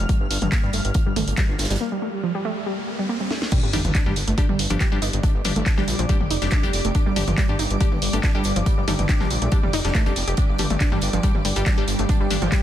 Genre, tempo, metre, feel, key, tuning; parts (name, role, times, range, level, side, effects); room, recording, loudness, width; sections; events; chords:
driving peak-time techno; 140 BPM; 4/4; straight; A4 = 440 Hz
dark detuned saw bass; bass; 0.0-12.5 s; F1 to G2; -25 LUFS; equal; sidechain pumping
granular cloud pad; texture; 0.0-12.6 s; G3 to F6; -30 LUFS; right 1 dB; built-in reverb, sidechain pumping
warbly dusty pluck; riff; 0.1-12.6 s; F3 to G4; -28 LUFS; right 1 dB; chorus, sidechain pumping, digital delay
electronic kick drum; drums; 0.1-12.6 s; -20 LUFS; equal
modern studio drum kit; drums; 0.1-12.6 s; hi-hat, snare drum; -36 LUFS; right 4 dB; sidechain pumping on hats, high-pass filter on hats, high-pass filter on snare, high-pass filter on room
techno drum kit; drums; 0.1-12.6 s; crash cymbal, handclaps, hi-hat, snare drum, toms; -27 LUFS; left 1 dB
riser and sub drop; sound effects; 1.6-5.2 s; -32 LUFS; right 1 dB
wavetable chord stab; stabs; 3.7-12.4 s; G3 to G4; -30 LUFS; left 4 dB; sidechain pumping, ping-pong delay
light reverb, digital ambience; dense, heavily limited modern master; -19 LUFS; side -11 dB against mid
0.0-3.5 A section; 3.5-12.6 B section
riser 1.6-3.5; break 1.8-3.5; drum fill 3.3; drop 3.5-12.6; impact 3.5-5.2
0.0 G5